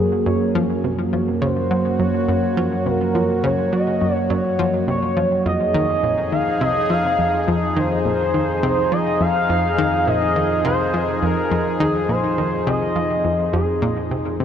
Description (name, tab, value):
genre	ambient, sequencer-driven space music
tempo	104 BPM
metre	4/4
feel	straight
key	unclear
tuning	A4 = 439 Hz
part	expressive synth lead	melody	0.0-14.4 s	Ab4 to F5	-21 LUFS	equal	lush chorus, analog delay
part	sweeping resonant pad	sustained chords	0.0-14.4 s	F2 to Ab4	-21 LUFS	equal	chorus
part	analog pluck	riff	0.0-14.4 s	F2 to Gb3	-23 LUFS	equal	chorus, analog delay
room	wet huge ambient reverb, RT60 8.4 s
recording	none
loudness	-17 LUFS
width	side -8 dB against mid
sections	0.0-14.4 A section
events	none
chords	0.0 Gbadd9; 5.5 Fm7